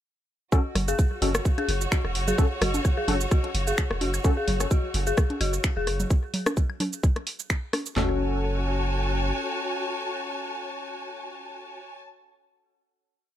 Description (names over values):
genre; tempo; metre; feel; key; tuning
minimal techno; 129 BPM; 4/4; swing 54% on 16ths; F# minor; A4 = 440 Hz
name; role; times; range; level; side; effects
dark detuned synth bell; riff; 0.5-8.2 s; F#4 to G#4; -31 LUFS; left 2 dB; chorus, sidechain pumping, ping-pong delay
percussive organ stab; stabs; 0.5-4.3, 8.0-11.8 s; C#4 to A4; -32 LUFS; left 3 dB; ensemble chorus, ping-pong delay
garage drum kit; drums; 0.5-8.1 s; handclaps, kick drum, snare drum, toms; -23 LUFS; equal; none
garage drum kit; drums; 0.5-7.9 s; finger snaps, hi-hat, shaker; -31 LUFS; right 2 dB; none
bright studio string section; texture; 0.5-12.0 s; F#4 to A5; -32 LUFS; equal; sidechain pumping
punchy sub bass; bass; 0.8-9.3 s; E1 to F#1; -28 LUFS; equal; sidechain pumping
electronic rim click, congas and woodblock; percussion; 0.8-7.8 s; none; -29 LUFS; equal; ping-pong delay
room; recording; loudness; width
little or no reverb; none; -23 LUFS; side -12 dB against mid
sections
0.5-8.0 drop; 8.0-11.7 final chord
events
drop 0.5-8.0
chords
0.5 F#5; 8.0 F#m